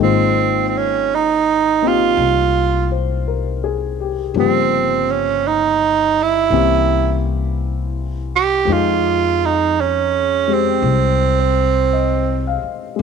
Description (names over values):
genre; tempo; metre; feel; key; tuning
jazz ballad; 56 BPM; 4/4; swing 66% on 8ths; Ab major; A4 = 440 Hz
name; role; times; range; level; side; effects
growling tenor saxophone; melody; 0.0-12.7 s; C4 to G4; -16 LUFS; right 8 dB; none
warm baby grand piano; accompaniment; 0.0-13.0 s; Db3 to F5; -22 LUFS; left 14 dB; none
upright bass; bass; 0.0-13.0 s; G1 to F2; -22 LUFS; left 2 dB; none
room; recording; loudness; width
light reverb, studio reverb; 1960s-style stereo with parts hard left and right; -14 LUFS; side -6 dB against mid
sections
0.0-13.0 A section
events
none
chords
0.0 Ab69; 4.3 Gm7b5; 6.5 C7b9; 8.7 Fm7